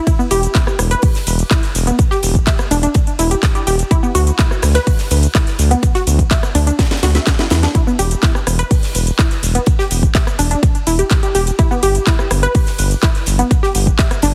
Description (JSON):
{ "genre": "progressive house", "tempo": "125 BPM", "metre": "4/4", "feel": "straight", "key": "E minor", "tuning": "A4 = 439 Hz", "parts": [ { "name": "unison pluck", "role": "arpeggios", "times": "0.1-14.3 s", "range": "B3 to E5", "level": "-22 LUFS", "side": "equal", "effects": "sidechain pumping, tape echo" }, { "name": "electronic kick drum", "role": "drums", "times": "0.1-14.1 s", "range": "none", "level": "-16 LUFS", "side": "equal", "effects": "none" }, { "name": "gated 80s drum kit", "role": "drums", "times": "0.1-14.3 s", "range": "hi-hat, ride cymbal, snare drum", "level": "-34 LUFS", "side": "equal", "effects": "none" }, { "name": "house drum kit", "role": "drums", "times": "0.1-14.3 s", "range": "cabasa, handclaps, hi-hat, rim click, snare drum", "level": "-23 LUFS", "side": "equal", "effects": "sidechain pumping on hats, sidechain pumping on perc" }, { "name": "round analog bass", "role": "bass", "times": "0.3-14.3 s", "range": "E1 to E2", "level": "-17 LUFS", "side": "equal", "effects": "sidechain pumping" } ], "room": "studio reverb", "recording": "heavily compressed radio sound, multiband compression", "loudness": "-15 LUFS", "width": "mono", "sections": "0.0-14.3 A section", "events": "drum fill 6.8-7.7", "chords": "none" }